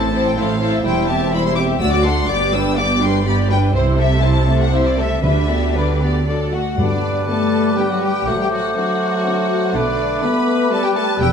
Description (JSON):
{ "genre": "quick classical-period movement for symphony orchestra", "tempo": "123 BPM", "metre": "3/4", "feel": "rubato", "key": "G major", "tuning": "A4 = 440 Hz", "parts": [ { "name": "rich studio violin section", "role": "melody", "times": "0.0-11.3 s", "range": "C5 to E6", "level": "-24 LUFS", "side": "left 5 dB", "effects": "none" }, { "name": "rich studio violin section", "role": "second line", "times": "0.0-11.3 s", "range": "D4 to G5", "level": "-23 LUFS", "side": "left 5 dB", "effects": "none" }, { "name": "rich studio viola section", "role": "accompaniment", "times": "0.0-11.1 s", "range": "D3 to G4", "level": "-22 LUFS", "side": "right 3 dB", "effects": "none" }, { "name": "rich studio cello section", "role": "bass", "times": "0.0-11.3 s", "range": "D2 to D3", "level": "-22 LUFS", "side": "right 2 dB", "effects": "none" }, { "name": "rich studio double bass section", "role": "bass", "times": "0.0-11.3 s", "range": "E1 to D2", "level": "-21 LUFS", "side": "right 2 dB", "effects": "none" }, { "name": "timpani", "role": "percussion", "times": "5.2-7.5 s", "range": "G2 to D3", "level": "-25 LUFS", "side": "left 1 dB", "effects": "none" }, { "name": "mellow hollow concert flute", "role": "second line", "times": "6.8-11.3 s", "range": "D6 to E6", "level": "-26 LUFS", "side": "left 2 dB", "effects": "none" }, { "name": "warm oboe", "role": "second line", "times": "6.8-11.3 s", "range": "B4 to C5", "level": "-26 LUFS", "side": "equal", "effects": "none" }, { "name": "mellow bassoon", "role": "accompaniment", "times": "6.8-11.3 s", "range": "G3 to A3", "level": "-22 LUFS", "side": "right 4 dB", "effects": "none" }, { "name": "mellow French horn section", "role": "sustained chords", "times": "6.8-11.3 s", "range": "D3 to B3", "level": "-21 LUFS", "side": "left 4 dB", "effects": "none" } ], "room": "moderate scoring stage reverb, RT60 1.4 s", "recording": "none", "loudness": "-15 LUFS", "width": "side -7 dB against mid", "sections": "0.0-6.8 A section; 6.8-11.3 B section", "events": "none", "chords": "0.0 Am; 0.9 C/E; 1.8 D; 2.3 G; 3.7 Am/C; 5.2 G/D; 6.3 D; 6.8 G; 8.3 D7/A; 9.8 G/B" }